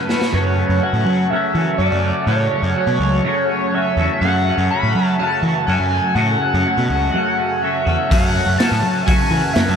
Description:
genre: psychedelic rock.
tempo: 124 BPM.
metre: 4/4.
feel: straight.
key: F# minor.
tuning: A4 = 440 Hz.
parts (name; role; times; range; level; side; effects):
overdriven synth lead; melody; 0.0-9.8 s; B4 to B5; -20 LUFS; equal; distortion, phaser, ping-pong delay.
combo organ; sustained chords; 0.0-9.8 s; C#3 to A4; -27 LUFS; right 4 dB; none.
twangy electric guitar; riff; 0.0-9.8 s; F#2 to F#4; -20 LUFS; left 1 dB; phaser, double-tracked left and right.
raw garage drum kit; drums; 0.1-0.3, 8.1-9.7 s; hi-hat, kick drum, snare drum; -19 LUFS; equal; none.
fuzz picked electric bass; bass; 0.3-9.8 s; C#2 to F#3; -19 LUFS; equal; overdrive.
room: moderate cathedral reverb, RT60 5.0 s.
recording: dreamy mix soaked in reverb.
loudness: -15 LUFS.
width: side -7 dB against mid.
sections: 0.3-9.8 A section.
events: break 0.0-0.3; drum fill 0.0-0.3.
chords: 0.3 F#m.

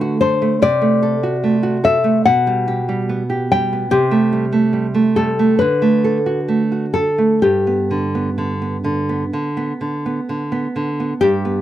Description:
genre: romantic duo for nylon-string guitar and classical guitar.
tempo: 61-75 BPM.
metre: 4/4.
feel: rubato.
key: G major.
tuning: A4 = 440 Hz.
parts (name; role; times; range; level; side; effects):
nylon-string guitar; melody; 0.0-11.6 s; G4 to G5; -17 LUFS; left 4 dB; none.
nylon-string guitar; accompaniment; 0.0-11.6 s; G2 to A4; -17 LUFS; right 3 dB; none.
room: light reverb.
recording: dry, close 1970s-style studio recording.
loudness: -15 LUFS.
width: side -12 dB against mid.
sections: 0.0-11.2 A section.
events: none.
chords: 0.0 D; 0.6 D7/C; 2.3 G/B; 3.9 Am7/C; 5.6 D; 7.4 G.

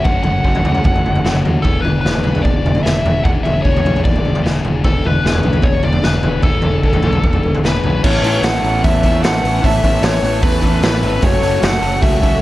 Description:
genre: indie rock.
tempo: 150 BPM.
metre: 4/4.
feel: straight.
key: A major.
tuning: A4 = 440 Hz.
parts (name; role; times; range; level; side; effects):
nasal lead guitar with a parked wah; melody; 0.0-12.4 s; A4 to F#5; -20 LUFS; left 2 dB; overdrive, slapback echo, plate reverb.
crunchy overdriven guitar; riff; 0.0-12.4 s; A2 to G#4; -21 LUFS; left 4 dB; none.
raw garage drum kit; drums; 0.0-12.3 s; crash cymbal, hi-hat, kick drum, snare drum, toms; -16 LUFS; right 1 dB; none.
growling fingered electric bass; bass; 0.1-12.4 s; E1 to E2; -20 LUFS; equal; overdrive.
phased string machine; sustained chords; 8.0-12.4 s; A4 to C#6; -31 LUFS; equal; none.
electric guitar through a small old amp; riff; 8.0-12.4 s; E3 to A4; -21 LUFS; right 5 dB; analog chorus.
room: light reverb.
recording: dark, warm production.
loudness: -12 LUFS.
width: side -16 dB against mid.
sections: 0.0-8.0 A section; 8.0-12.4 B section.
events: none.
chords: 0.0 F#m; 1.6 E7sus4; 8.0 Aadd9; 11.2 F#m.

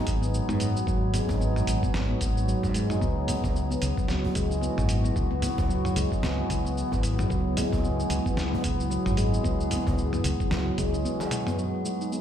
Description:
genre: organic downtempo.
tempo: 112 BPM.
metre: 4/4.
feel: swing 58% on 16ths.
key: unclear.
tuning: A4 = 442 Hz.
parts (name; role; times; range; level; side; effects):
warbly tape-like pad; sustained chords; 0.0-12.2 s; C#3 to C#5; -34 LUFS; right 1 dB; chorus, built-in reverb, sidechain pumping.
handpan; arpeggios; 0.0-12.2 s; F#3 to D#4; -29 LUFS; left 1 dB; low-pass filter, tape echo.
mellow fretless electric bass; bass; 0.1-11.1 s; G#1 to G#2; -28 LUFS; equal; sidechain pumping.
dusty soul sampler-style drum kit; drums; 0.1-12.2 s; hi-hat, shaker, snare drum, toms; -34 LUFS; equal; overdrive.
electronic kick drum; drums; 0.1-10.9 s; none; -30 LUFS; equal; none.
djembe; percussion; 1.1-11.6 s; none; -36 LUFS; right 2 dB; none.
bronze singing bowl; texture; 11.6-12.2 s; G#4; -43 LUFS; left 5 dB; none.
room: light reverb.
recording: played on a big sound system in a bare room, large studio reverb.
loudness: -24 LUFS.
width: side -10 dB against mid.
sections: 0.0-11.6 A section.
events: drum fill 11.2-11.6.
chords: 0.0 G#m7; 3.0 C#m7; 11.6 G#m7.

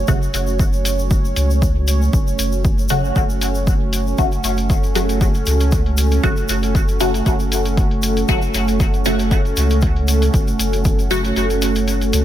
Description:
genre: dub techno.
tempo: 117 BPM.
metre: 4/4.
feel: swing 54% on 16ths.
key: F# minor.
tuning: A4 = 439 Hz.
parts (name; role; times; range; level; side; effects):
dark analog pad; sustained chords; 0.0-12.2 s; A3 to A4; -23 LUFS; right 2 dB; chorus, sidechain pumping.
pure sine sub bass; bass; 0.0-12.2 s; F#1 to C#2; -20 LUFS; equal; sidechain pumping.
bubbling stepped-filter texture; texture; 0.0-12.2 s; C#4 to C#5; -28 LUFS; right 2 dB; chorus, built-in reverb, sidechain pumping.
filtered dub chord stab; stabs; 0.1-11.2 s; C#3 to F#4; -23 LUFS; left 1 dB; phaser, sidechain pumping, dub echo.
electronic kick drum; drums; 0.1-11.0 s; none; -17 LUFS; equal; overdrive.
egg shaker; percussion; 0.1-12.2 s; none; -30 LUFS; left 4 dB; none.
electronic hi-hat; drums; 0.3-12.2 s; none; -27 LUFS; left 2 dB; none.
room: digital ambience.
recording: none.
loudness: -15 LUFS.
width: side -12 dB against mid.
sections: 0.0-12.2 A section.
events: kick drops out 11.4-12.2.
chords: 0.0 F#m.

